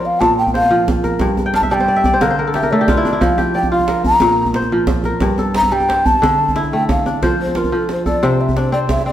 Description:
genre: west african traditional, West African string and xylophone music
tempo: 120 BPM (dotted quarters)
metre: 12/8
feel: straight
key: F major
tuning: A4 = 440 Hz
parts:
  - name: breathy mellow long shakuhachi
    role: melody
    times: 0.0-9.1 s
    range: A4 to Bb5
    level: -17 LUFS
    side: equal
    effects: none
  - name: kora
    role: arpeggios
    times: 0.0-9.1 s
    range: G2 to G5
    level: -17 LUFS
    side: equal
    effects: none
  - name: djembe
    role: percussion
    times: 0.2-9.1 s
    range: none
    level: -20 LUFS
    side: right 1 dB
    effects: none
room: moderate recital hall reverb, RT60 1.7 s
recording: none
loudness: -13 LUFS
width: side -11 dB against mid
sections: 0.0-7.2 A section; 7.2-9.1 B section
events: shakuhachi solo 0.0-7.2; kora fill 1.5-3.2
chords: 0.2 Bb5; 1.2 Gm; 2.2 D5; 3.2 Bb6/F; 4.2 Bb5; 5.2 Gm; 6.2 Dm; 7.2 F; 8.2 C69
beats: 0.20 0.70 | 1.21 1.71 2.21 2.71 | 3.21 3.71 4.22 4.72 | 5.22 5.72 6.22 6.72 | 7.22 7.73 8.23 8.73

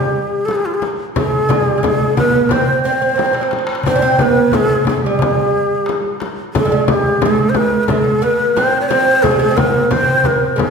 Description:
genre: Arabic maqam ensemble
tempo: 89 BPM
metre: 4/4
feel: straight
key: unclear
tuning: A4 = 440 Hz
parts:
  - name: breathy ney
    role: melody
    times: 0.0-10.7 s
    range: F4-43c to Db5+44c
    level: -16 LUFS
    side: left 1 dB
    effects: none
  - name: oud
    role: second line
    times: 0.0-10.7 s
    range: G3+40c to D4-50c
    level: -18 LUFS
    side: right 4 dB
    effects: none
  - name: darbuka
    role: percussion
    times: 0.2-10.7 s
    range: none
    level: -21 LUFS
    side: left 1 dB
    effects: none
  - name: frame drum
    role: percussion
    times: 0.5-10.7 s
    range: none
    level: -21 LUFS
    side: left 4 dB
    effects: none
room: wet scoring stage reverb, RT60 1.4 s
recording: recorded in a church or concert hall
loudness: -12 LUFS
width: side -5 dB against mid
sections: 0.0-10.7 A section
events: drum fill 3.2-3.9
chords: none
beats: 0.49 | 1.17 1.84 2.51 3.19 | 3.86 4.53 5.21 5.88 | 6.55 7.22 7.90 8.57 | 9.24 9.92 10.59

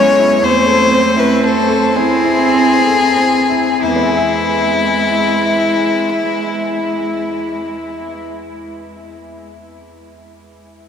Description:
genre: classical, slow romantic movement for piano quartet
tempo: 30-45 BPM (dotted quarters)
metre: 6/8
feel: rubato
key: E major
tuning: A4 = 440 Hz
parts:
  - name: warm violin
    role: melody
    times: 0.0-8.2 s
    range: E4 to C#5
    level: -15 LUFS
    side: left 4 dB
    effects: none
  - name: warm cello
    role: second line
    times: 0.0-8.2 s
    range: G#3 to C4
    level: -19 LUFS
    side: right 3 dB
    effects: none
  - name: warm baby grand piano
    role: accompaniment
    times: 0.0-10.9 s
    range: E2 to E5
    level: -21 LUFS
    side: right 1 dB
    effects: none
  - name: warm viola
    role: accompaniment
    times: 0.0-8.2 s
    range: C4 to E4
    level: -21 LUFS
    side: right 2 dB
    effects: none
room: wet huge ambient reverb, RT60 8.6 s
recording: in a vast, echoing space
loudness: -11 LUFS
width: side -7 dB against mid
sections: 0.0-3.8 A section; 3.8-7.5 B section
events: slowing down 0.0-3.8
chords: 0.4 Am/E; 3.8 E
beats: | 0.44 1.97 | 3.83 5.66

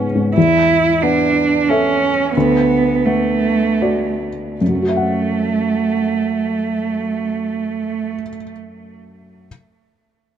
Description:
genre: neoclassical piano and strings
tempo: 73-91 BPM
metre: 3/4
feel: rubato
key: F# minor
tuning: A4 = 441 Hz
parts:
  - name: dark cello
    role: second line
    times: 0.0-8.1 s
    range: A3 to E4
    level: -17 LUFS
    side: right 4 dB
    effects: tape echo
  - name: felt-muted upright piano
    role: accompaniment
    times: 0.0-9.5 s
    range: C#2 to F#5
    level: -19 LUFS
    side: left 2 dB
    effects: none
room: moderate small room reverb, RT60 0.5 s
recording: dark, warm production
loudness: -14 LUFS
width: side -9 dB against mid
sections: 0.4-4.6 A section; 4.6-9.5 B section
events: slowing down 0.0-4.6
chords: 0.4 E7sus4; 2.3 Bm7/D; 4.6 F#m7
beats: | 0.36 1.02 1.68 | 2.35 3.05 3.80 | 4.60 5.41 6.22 | 7.03 7.84 8.65

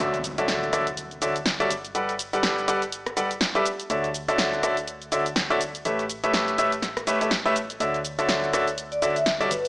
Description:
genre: piano house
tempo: 123 BPM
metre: 4/4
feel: swing 58% on 16ths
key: D major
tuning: A4 = 440 Hz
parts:
  - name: bright grand piano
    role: riff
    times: 0.0-9.5 s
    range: D3 to F#5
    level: -24 LUFS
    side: equal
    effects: none
  - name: organ-like FM bass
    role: bass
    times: 0.0-9.7 s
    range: G1 to D2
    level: -43 LUFS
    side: equal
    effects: none
  - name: breakbeat sampler-style drum kit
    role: drums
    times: 0.0-9.6 s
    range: none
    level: barely audible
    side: none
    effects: none
  - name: punchy analog drum machine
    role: drums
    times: 0.0-9.7 s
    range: hi-hat, rim click, shaker, snare drum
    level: -27 LUFS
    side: equal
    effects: none
  - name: impact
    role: sound effects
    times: 0.0-1.9 s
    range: none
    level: -40 LUFS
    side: equal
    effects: none
  - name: vibraphone with soft mallets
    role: melody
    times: 8.9-9.7 s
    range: B4 to E5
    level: -28 LUFS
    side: equal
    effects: digital delay
room: moderate digital room reverb, RT60 1.1 s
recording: small speaker sound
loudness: -22 LUFS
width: side -25 dB against mid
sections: 0.0-9.7 A section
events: impact 0.0-1.9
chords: 0.0 Dmaj9; 1.7 Gmaj9; 3.9 Dmaj9; 5.9 A9; 7.8 Dmaj9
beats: | 0.00 0.49 0.97 1.46 | 1.95 2.44 2.92 3.41 | 3.90 4.39 4.88 5.36 | 5.85 6.34 6.83 7.32 | 7.80 8.29 8.78 9.27

